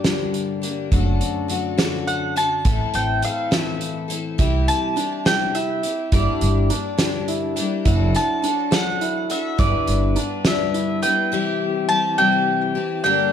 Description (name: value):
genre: indie folk with a building arrangement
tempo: 69 BPM (dotted quarters)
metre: 6/8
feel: straight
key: unclear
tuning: A4 = 435 Hz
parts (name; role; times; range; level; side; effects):
- mandolin; melody; 0.0-13.3 s; D5 to A5; -22 LUFS; right 1 dB; digital delay
- fingerpicked steel-string acoustic guitar; accompaniment; 0.0-6.1 s; F#2 to G4; -28 LUFS; left 2 dB; none
- picked twelve-string acoustic guitar; accompaniment; 0.0-13.3 s; G2 to B4; -25 LUFS; left 8 dB; none
- loose indie drum kit; drums; 0.0-11.2 s; hi-hat, kick drum, snare drum; -23 LUFS; right 1 dB; none
- upright bass; bass; 0.9-10.2 s; F#1 to C2; -21 LUFS; equal; none
- warm upright piano; arpeggios; 4.4-11.3 s; D4 to E4; -26 LUFS; right 3 dB; none
- mellow tonewheel organ; sustained chords; 11.3-13.3 s; D3 to G4; -29 LUFS; right 2 dB; slow rotary speaker, overdrive, chorus vibrato
room: light reverb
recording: dark, warm production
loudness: -18 LUFS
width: side -9 dB against mid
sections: 0.0-11.3 A section; 11.3-13.3 B section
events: none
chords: 0.0 Gm; 0.9 D/F#; 2.7 Am; 4.4 C; 6.1 Gm; 7.9 D/F#; 9.6 G; 11.3 C